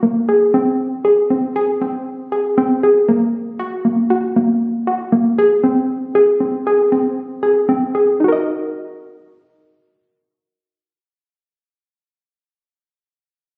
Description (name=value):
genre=contemporary instrumental, contemporary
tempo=118 BPM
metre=5/4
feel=straight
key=Eb dorian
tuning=A4 = 440 Hz
part: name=soft round pluck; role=solo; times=0.0-12.3 s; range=Bb3 to Eb5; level=-16 LUFS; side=equal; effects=chorus
room=moderate recital hall reverb, RT60 1.6 s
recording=recorded on a phone in the room, studio reverb, nothing above 10.7 kHz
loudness=-16 LUFS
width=mono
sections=0.0-8.2 A section; 8.2-10.8 B section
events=none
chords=0.0 Gbadd9/Bb (rootless); 0.5 Ab/C; 3.1 Gbadd9/Bb; 5.6 Ab/C; 8.2 Ebm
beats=0.03 | 0.54 1.05 1.56 2.06 2.57 | 3.08 3.59 4.10 4.61 5.12 | 5.63 6.14 6.66 7.17 7.68 | 8.20 8.71 9.23 9.74 10.26